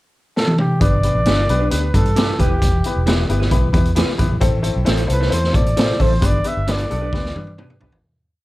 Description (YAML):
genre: uptempo 1960s-style soul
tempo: 133 BPM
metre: 4/4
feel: straight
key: G major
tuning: A4 = 444 Hz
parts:
  - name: breathy trumpet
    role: melody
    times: 0.4-7.8 s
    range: G4 to E5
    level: -23 LUFS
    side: equal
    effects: none
  - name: raw garage drum kit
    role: drums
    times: 0.4-8.0 s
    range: hi-hat, kick drum, snare drum, toms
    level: -18 LUFS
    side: equal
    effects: none
  - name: clear upright piano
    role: accompaniment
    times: 0.8-8.0 s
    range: G2 to C5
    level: -25 LUFS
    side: left 5 dB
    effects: none
  - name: vintage muted fingered electric bass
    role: bass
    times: 0.8-8.0 s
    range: E1 to A2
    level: -19 LUFS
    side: equal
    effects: none
  - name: electric guitar through a small old amp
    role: stabs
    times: 1.3-7.9 s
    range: D4 to C5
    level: -26 LUFS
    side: right 3 dB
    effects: analog chorus
room: light reverb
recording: dark, warm production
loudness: -15 LUFS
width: side -18 dB against mid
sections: 0.0-0.8 pickup bar; 0.8-8.0 A section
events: drum fill 0.4-0.8, 7.1-8.0; fade-out 6.2-8.0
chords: 0.0 N.C.; 0.8 G; 2.4 Em; 4.4 Am; 6.2 G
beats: 0.36 | 0.81 1.26 1.72 2.17 | 2.62 3.07 3.52 3.97 | 4.42 4.87 5.32 5.78 | 6.23 6.68 7.13 7.58